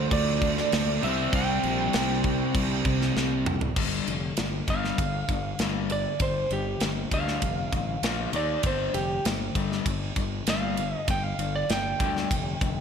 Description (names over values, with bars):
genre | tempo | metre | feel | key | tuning
hard rock | 98 BPM | 4/4 | straight | unclear | A4 = 440 Hz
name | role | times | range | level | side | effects
lightly driven lead guitar | melody | 0.0-12.8 s | G4 to G5 | -30 LUFS | right 3 dB | slapback echo
biting overdriven guitar | riff | 0.0-3.5 s | C3 to D4 | -30 LUFS | right 9 dB | none
overdriven semi-hollow guitar | riff | 0.0-12.8 s | G2 to Eb4 | -31 LUFS | left 9 dB | slapback echo
sludgy distorted guitar | riff | 0.0-3.5 s | C3 to E4 | -35 LUFS | equal | overdrive, slapback echo
fuzz fingered electric bass | bass | 0.0-12.8 s | F1 to Eb2 | -32 LUFS | equal | overdrive
tight metal drum kit | drums | 0.1-12.8 s | crash cymbal, kick drum, ride cymbal, snare drum, toms | -29 LUFS | equal | none
room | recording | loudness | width
moderate lush hall reverb, RT60 1.6 s, studio ambience | big arena sound | -24 LUFS | side -7 dB against mid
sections
0.0-3.8 A section; 3.8-12.8 B section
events
drum fill 3.2-3.8; lead electric guitar solo 3.8-12.8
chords
0.0 Dm; 1.0 C; 3.8 G5; 8.0 Bb5; 8.3 Eb5; 8.6 G5